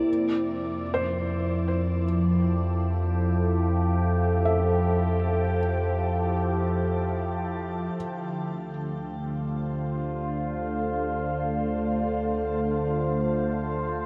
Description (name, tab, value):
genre	ambient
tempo	free time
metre	none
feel	none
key	D minor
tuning	A4 = 440 Hz
part	evolving wavetable pad	sustained chords	0.0-14.1 s	D3 to D5	-28 LUFS	equal	phaser, built-in reverb, shimmer reverb
part	felt-muted upright piano	arpeggios	0.0-8.0 s	C5 to E5	-36 LUFS	equal	tape echo, shimmer reverb
part	warm sub bass	bass	0.0-14.1 s	D2 to F2	-31 LUFS	equal	none
room	wet huge ambient reverb, RT60 6.9 s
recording	dark, warm production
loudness	-27 LUFS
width	mono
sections	0.0-8.0 A section; 8.0-14.1 B section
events	none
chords	0.1 Fmaj9; 8.0 Dm7